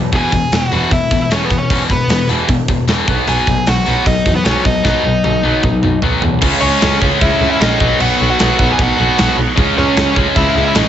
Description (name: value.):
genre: punk rock.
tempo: 152 BPM.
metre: 4/4.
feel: straight.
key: unclear.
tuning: A4 = 439 Hz.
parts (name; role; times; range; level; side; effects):
raw garage guitar; riff; 0.0-10.9 s; E2 to C#4; -22 LUFS; right 14 dB; overdrive.
tight distorted guitar; riff; 0.0-10.9 s; E2 to C#4; -17 LUFS; left 6 dB; distortion.
nasal lead guitar with a parked wah; melody; 0.1-10.9 s; B3 to G#5; -17 LUFS; equal; overdrive.
dark double bass; bass; 0.1-10.8 s; E1 to E2; -19 LUFS; equal; none.
tight metal drum kit; drums; 0.1-10.8 s; crash cymbal, hi-hat, kick drum, snare drum, toms; -17 LUFS; right 1 dB; none.
tight distorted guitar; riff; 6.4-10.9 s; B2 to C#4; -20 LUFS; right 2 dB; distortion.
room: light reverb.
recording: nothing above 7.9 kHz.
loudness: -11 LUFS.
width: side -10 dB against mid.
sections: 0.0-6.4 A section; 6.4-10.9 B section.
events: drum fill 4.8-6.4.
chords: 0.1 E; 3.1 B; 6.4 C#m; 7.8 B; 9.6 C#m.